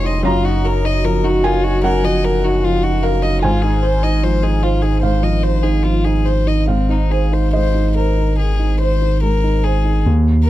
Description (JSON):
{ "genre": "neoclassical piano and strings", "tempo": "70-77 BPM", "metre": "4/4", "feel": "rubato", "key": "unclear", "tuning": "A4 = 440 Hz", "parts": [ { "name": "rich violin", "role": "melody", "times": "0.0-10.5 s", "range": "C4 to Eb5", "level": "-22 LUFS", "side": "left 5 dB", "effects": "none" }, { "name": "felt-muted upright piano", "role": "accompaniment", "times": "0.0-10.5 s", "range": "Eb2 to C6", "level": "-19 LUFS", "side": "right 2 dB", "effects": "none" }, { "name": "punchy sub bass", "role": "bass", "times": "0.0-10.5 s", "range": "F1 to Eb2", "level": "-17 LUFS", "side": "equal", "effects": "none" } ], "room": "little or no reverb", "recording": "dark, warm production", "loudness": "-14 LUFS", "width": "side -14 dB against mid", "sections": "0.0-10.1 A section", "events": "none", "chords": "0.3 Ebmadd9/Gb; 3.4 Fm7/Ab" }